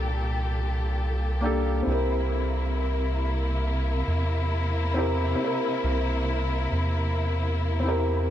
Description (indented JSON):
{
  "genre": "trip hop",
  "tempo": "68 BPM",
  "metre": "4/4",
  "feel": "swing 54% on 16ths",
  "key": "unclear",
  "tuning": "A4 = 440 Hz",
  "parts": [
    { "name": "felt-muted upright piano", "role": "accompaniment", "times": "0.0-8.3 s", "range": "Bb3 to Bb4", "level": "-30 LUFS", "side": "left 1 dB", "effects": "harmonic tremolo, vintage 12-bit sampler grit, low-pass filter, tape echo" },
    { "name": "dark symphonic string section", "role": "sustained chords", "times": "0.0-8.3 s", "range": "Bb2 to A4", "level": "-30 LUFS", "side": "left 1 dB", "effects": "none" },
    { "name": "soft dub sub bass", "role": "bass", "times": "0.0-8.3 s", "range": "C2 to E2", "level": "-26 LUFS", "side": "equal", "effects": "none" }
  ],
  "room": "light reverb, studio ambience",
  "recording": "echo-heavy mix",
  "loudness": "-24 LUFS",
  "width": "side -11 dB against mid",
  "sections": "0.0-8.3 A section",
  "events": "none",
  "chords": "0.0 Gmadd9; 1.9 C7"
}